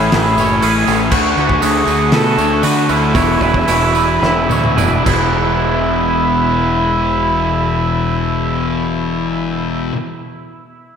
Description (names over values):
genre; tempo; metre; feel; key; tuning
rock, shoegaze and dream pop; 102-121 BPM; 4/4; straight; E mixolydian; A4 = 440 Hz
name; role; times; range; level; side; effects
mellow cor anglais; melody; 0.0-9.9 s; E4 to A4; -18 LUFS; right 2 dB; diffuse ambient delay
twangy electric guitar; arpeggios; 0.0-6.1 s; E4 to C#5; -24 LUFS; left 2 dB; ensemble chorus, diffuse ambient delay
thick fuzz guitar; riff; 0.0-10.0 s; E2 to D4; -18 LUFS; left 6 dB; distortion, wide subtle chorus
twangy electric guitar; riff; 0.0-10.0 s; E2 to G#4; -20 LUFS; right 7 dB; reverse reverb
growling fingered electric bass; bass; 0.0-9.9 s; E1 to D3; -20 LUFS; equal; overdrive
loose indie drum kit; drums; 0.1-5.2 s; crash cymbal, hi-hat, kick drum, snare drum, toms; -20 LUFS; equal; none
tambourine; percussion; 0.4-5.6 s; none; -32 LUFS; right 14 dB; none
room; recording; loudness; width
wet lush hall reverb, RT60 1.8 s, studio ambience; dreamy mix soaked in reverb; -12 LUFS; side -7 dB against mid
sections
0.0-5.4 A section; 5.4-10.0 B section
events
slowing down 1.1-5.4; drum fill 4.2-5.4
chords
0.0 Amaj7; 1.1 Dmaj7; 3.1 E7sus4; 5.1 E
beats
0.13 0.62 | 1.12 1.62 2.12 2.63 | 3.15 3.68 4.22 4.78 | 5.35 5.94 6.53 7.11 | 7.70 8.28 8.87 9.46